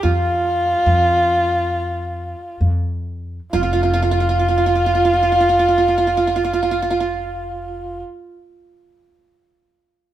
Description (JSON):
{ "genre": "turkish", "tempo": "63-74 BPM", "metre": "4/4", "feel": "straight", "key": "unclear", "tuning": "A4 = 440 Hz", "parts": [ { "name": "dark kamancheh", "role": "melody", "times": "0.0-8.0 s", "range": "F4", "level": "-18 LUFS", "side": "equal", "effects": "none" }, { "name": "qanun", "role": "second line", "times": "0.0-8.3 s", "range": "F4 to Bb4", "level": "-22 LUFS", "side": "right 6 dB", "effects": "none" }, { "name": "upright bass", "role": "bass", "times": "0.0-8.0 s", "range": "F1 to F2", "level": "-22 LUFS", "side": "equal", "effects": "none" } ], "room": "moderate studio reverb, RT60 0.9 s", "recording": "band playing live in one room", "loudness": "-15 LUFS", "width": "side -12 dB against mid", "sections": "0.0-3.5 A section; 3.5-7.3 B section", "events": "slowing down 0.0-3.5", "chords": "none" }